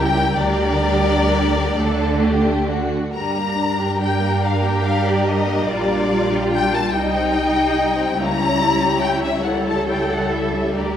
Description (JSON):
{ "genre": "classical, slow romantic movement for string orchestra", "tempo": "43-49 BPM (dotted quarters)", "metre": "6/8", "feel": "rubato", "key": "G minor", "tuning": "A4 = 440 Hz", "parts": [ { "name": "warm studio violin section", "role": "melody", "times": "0.0-11.0 s", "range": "D5 to Bb5", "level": "-22 LUFS", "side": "left 4 dB", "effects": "none" }, { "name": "warm studio violin section", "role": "second line", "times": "0.0-11.0 s", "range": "G3 to Eb5", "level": "-24 LUFS", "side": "left 2 dB", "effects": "none" }, { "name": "warm studio viola section", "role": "accompaniment", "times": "0.0-11.0 s", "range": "G3 to E4", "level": "-22 LUFS", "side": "right 1 dB", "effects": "none" }, { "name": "warm studio cello section", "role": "bass", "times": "0.0-11.0 s", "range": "C#3 to A4", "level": "-25 LUFS", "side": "right 2 dB", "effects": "none" }, { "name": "warm studio double bass section", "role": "bass", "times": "0.0-11.0 s", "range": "Bb1 to G2", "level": "-25 LUFS", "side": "right 2 dB", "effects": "none" } ], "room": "wet concert hall reverb, RT60 2.2 s", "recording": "faint mains hum", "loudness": "-16 LUFS", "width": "side -9 dB against mid", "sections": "0.0-3.2 A section; 3.2-11.0 B section", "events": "none", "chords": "0.4 Gm/D; 1.8 D; 3.2 Gm; 5.7 Gm/Bb; 6.9 Cm; 8.2 C#dim7", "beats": "| 0.39 1.78 | 3.15 4.43 | 5.69 6.93 | 8.17 9.45 | 10.76" }